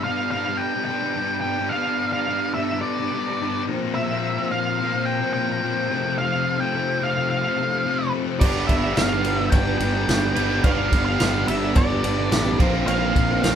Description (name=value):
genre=classic rock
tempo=108 BPM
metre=4/4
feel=straight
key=G mixolydian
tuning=A4 = 440 Hz
part: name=octave-fuzz lead guitar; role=melody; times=0.0-13.6 s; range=D5 to G5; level=-25 LUFS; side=right 2 dB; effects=distortion
part: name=tonewheel organ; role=sustained chords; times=0.0-13.6 s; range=C4 to D5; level=-36 LUFS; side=right 1 dB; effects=overdrive, fast rotary speaker
part: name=crunchy overdriven guitar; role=riff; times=0.0-13.6 s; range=F2 to D4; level=-25 LUFS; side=left 4 dB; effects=none
part: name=barky reed electric piano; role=accompaniment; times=8.4-13.5 s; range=C4 to F5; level=-36 LUFS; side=right 4 dB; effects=none
part: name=picked steel-string acoustic guitar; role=accompaniment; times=8.4-13.6 s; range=G2 to B4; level=-34 LUFS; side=right 5 dB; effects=none
part: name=distorted electric guitar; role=riff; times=8.4-13.6 s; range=G2 to D4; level=-31 LUFS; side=right 2 dB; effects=none
part: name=overdriven semi-hollow guitar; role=riff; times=8.4-13.6 s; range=G3 to B4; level=-28 LUFS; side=right 7 dB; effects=none
part: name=fuzz fingered electric bass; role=bass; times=8.4-13.6 s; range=G1 to Bb1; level=-26 LUFS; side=equal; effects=overdrive
part: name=vintage drum kit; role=drums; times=8.4-13.6 s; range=crash cymbal, kick drum, ride cymbal, snare drum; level=-22 LUFS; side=equal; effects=none
part: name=cowbell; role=percussion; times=8.4-13.6 s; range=none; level=-36 LUFS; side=left 1 dB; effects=none
room=moderate large studio reverb, RT60 0.9 s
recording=band playing live in one room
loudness=-20 LUFS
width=side -8 dB against mid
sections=0.0-13.6 A section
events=none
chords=0.0 G; 3.7 Bbsus2; 5.9 Fadd9; 8.4 G; 12.6 Bbsus2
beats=0.05 0.61 1.17 | 1.73 2.28 2.84 3.40 | 3.95 4.51 5.07 5.63 | 6.18 6.74 7.30 7.86 | 8.41 8.97 9.53 10.09 | 10.65 11.20 11.76 12.32 | 12.88 13.44